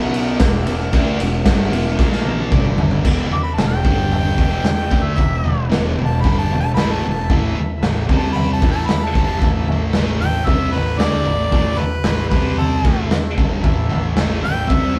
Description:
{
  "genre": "garage rock duo or trio",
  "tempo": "113 BPM",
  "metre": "4/4",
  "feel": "straight",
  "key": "E minor",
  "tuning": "A4 = 440 Hz",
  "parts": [
    { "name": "combo organ", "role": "sustained chords", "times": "0.0-15.0 s", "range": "C4 to A#5", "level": "-36 LUFS", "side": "equal", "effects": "none" },
    { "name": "thick fuzz guitar", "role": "riff", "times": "0.0-15.0 s", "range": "E2 to D4", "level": "-24 LUFS", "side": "equal", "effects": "distortion" },
    { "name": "fuzz picked electric bass", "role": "bass", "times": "0.0-15.0 s", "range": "E1 to D2", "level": "-28 LUFS", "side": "equal", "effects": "overdrive" },
    { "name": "raw garage drum kit", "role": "drums", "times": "0.1-15.0 s", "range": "crash cymbal, kick drum, ride cymbal, snare drum, toms", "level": "-20 LUFS", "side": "equal", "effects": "none" },
    { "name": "clear harmonica", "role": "melody", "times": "3.3-15.0 s", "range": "A4 to D6", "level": "-26 LUFS", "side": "equal", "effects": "overdrive" }
  ],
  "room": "light reverb",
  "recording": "band playing live in one room",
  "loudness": "-18 LUFS",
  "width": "mono",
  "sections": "0.0-3.1 A section; 3.1-15.0 B section",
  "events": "drum fill 2.0-3.1; transistor combo organ fill 2.0-3.1",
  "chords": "0.4 Em; 2.0 A#5; 2.5 G5; 3.1 Em; 3.8 G5; 4.4 Em; 7.3 A5; 8.1 C5; 8.6 A5; 12.3 C5; 12.8 A5",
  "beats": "0.40 | 0.93 1.46 1.99 2.52 | 3.05 3.58 4.11 4.64 | 5.17 5.71 6.24 6.76 | 7.29 7.82 8.35 8.88 | 9.41 9.94 10.47 11.00 | 11.53 12.05 12.58 13.11 | 13.64 14.17 14.70"
}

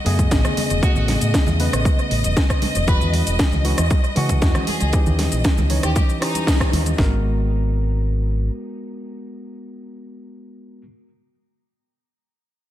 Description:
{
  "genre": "nu-disco, nu disco",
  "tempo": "117 BPM",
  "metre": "4/4",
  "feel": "straight",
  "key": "unclear",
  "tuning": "A4 = 440 Hz",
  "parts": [
    { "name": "tine electric piano", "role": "accompaniment", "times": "0.0-10.8 s", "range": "C#3 to C#5", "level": "-26 LUFS", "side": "equal", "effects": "overdrive, analog delay" },
    { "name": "rich symphonic violin section", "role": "sustained chords", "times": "0.0-7.0 s", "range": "D#5", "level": "-28 LUFS", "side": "left 1 dB", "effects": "sidechain pumping" },
    { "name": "fingered electric bass with an envelope filter", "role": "bass", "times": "0.1-8.5 s", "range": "E1 to C#3", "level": "-20 LUFS", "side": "equal", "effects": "none" },
    { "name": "house drum kit", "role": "drums", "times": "0.1-7.0 s", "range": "hi-hat, rim click, shaker, snare drum", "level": "-25 LUFS", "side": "equal", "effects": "overdrive, analog delay" },
    { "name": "house drum kit", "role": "drums", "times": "0.2-7.1 s", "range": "kick drum, snare drum", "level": "-18 LUFS", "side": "equal", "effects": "overdrive" },
    { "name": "congas", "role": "percussion", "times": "0.2-6.8 s", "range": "none", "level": "-31 LUFS", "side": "right 3 dB", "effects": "none" },
    { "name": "bright symphonic violin section", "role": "melody", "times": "0.8-6.7 s", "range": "D#4 to B4", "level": "-31 LUFS", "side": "equal", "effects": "dub echo" }
  ],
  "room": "light reverb, digital ambience",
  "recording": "echo-heavy mix",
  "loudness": "-16 LUFS",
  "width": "side -13 dB against mid",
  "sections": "0.0-7.0 A section; 7.0-11.1 B section",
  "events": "drop 0.0-7.0; band accent 6.5",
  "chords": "0.0 Amaj9; 2.9 E69; 4.9 D#7b9; 7.0 G#m9",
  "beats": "0.32 | 0.83 1.34 1.85 2.37 | 2.88 3.39 3.91 4.42 | 4.93 5.45 5.96 6.47 | 6.98 7.50 8.01 8.52 | 9.04 9.55 10.06 10.57"
}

